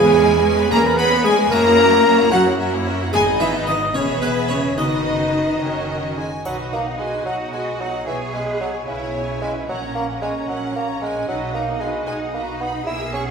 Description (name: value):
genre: cinematic, playful, whimsical film cue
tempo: 74 BPM (dotted quarters)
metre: 6/8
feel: straight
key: B major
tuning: A4 = 440 Hz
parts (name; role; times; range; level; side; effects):
- harpsichord; melody; 0.0-6.1 s; B4 to B5; -27 LUFS; equal; none
- rich studio violin section; melody; 0.0-13.3 s; B4 to B5; -27 LUFS; left 2 dB; none
- clear studio violin section; second line; 0.0-13.2 s; A#4 to E6; -30 LUFS; left 2 dB; none
- mellow hollow concert flute; second line; 0.0-6.2 s; B4 to B5; -25 LUFS; left 1 dB; none
- warm clarinet; second line; 0.0-6.1 s; B3 to B4; -26 LUFS; equal; none
- bright studio viola section; accompaniment; 0.0-13.3 s; A#3 to D#5; -27 LUFS; right 2 dB; none
- mellow French horn section; sustained chords; 0.0-6.1 s; B3 to B4; -18 LUFS; equal; none
- clear studio cello section; bass; 0.0-13.3 s; B2 to G#4; -26 LUFS; right 2 dB; none
- clear studio double bass section; bass; 0.0-13.3 s; E1 to F#2; -27 LUFS; right 2 dB; none
- clear bassoon; accompaniment; 5.6-13.3 s; C#3 to E4; -25 LUFS; right 1 dB; none
- triangle; percussion; 6.5-7.5 s; none; -47 LUFS; left 4 dB; none
room: wet recital hall reverb, RT60 1.4 s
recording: recorded in a church or concert hall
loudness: -17 LUFS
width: side -5 dB against mid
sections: 0.0-6.5 A section; 6.5-13.3 B section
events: none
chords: 0.0 C#m7/E; 1.5 F#7; 3.1 G#m; 3.9 E; 4.8 B/F#; 5.6 F#; 6.5 B; 8.1 C#m7/B; 9.7 F#/A#; 11.3 B